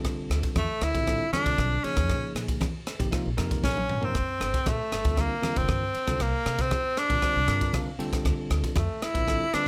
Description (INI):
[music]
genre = electric jazz fusion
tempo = 117 BPM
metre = 4/4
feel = straight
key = unclear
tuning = A4 = 440 Hz
[part]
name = bell-like tine electric piano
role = accompaniment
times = 0.0-9.7 s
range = C3 to G5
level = -36 LUFS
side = equal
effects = none
[part]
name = upright bass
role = bass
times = 0.0-9.6 s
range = F1 to C3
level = -32 LUFS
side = equal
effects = none
[part]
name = crisp fusion drum kit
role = drums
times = 0.0-9.7 s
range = kick drum, ride cymbal, rim click, snare drum, toms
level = -33 LUFS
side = equal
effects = none
[part]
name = congas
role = percussion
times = 0.0-9.6 s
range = none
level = -38 LUFS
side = equal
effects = none
[part]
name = bright tenor saxophone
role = melody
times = 0.6-9.7 s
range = A3 to E4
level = -30 LUFS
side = equal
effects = slapback echo
[sound]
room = light reverb, small room reverb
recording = none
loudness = -27 LUFS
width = mono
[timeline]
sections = 0.0-9.7 A section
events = drum fill 3.6-4.2; tine electric piano fill 7.5-8.3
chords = 0.0 Dm9; 1.8 Bbm9; 4.2 Gm9; 6.2 Csus2; 8.0 Dm9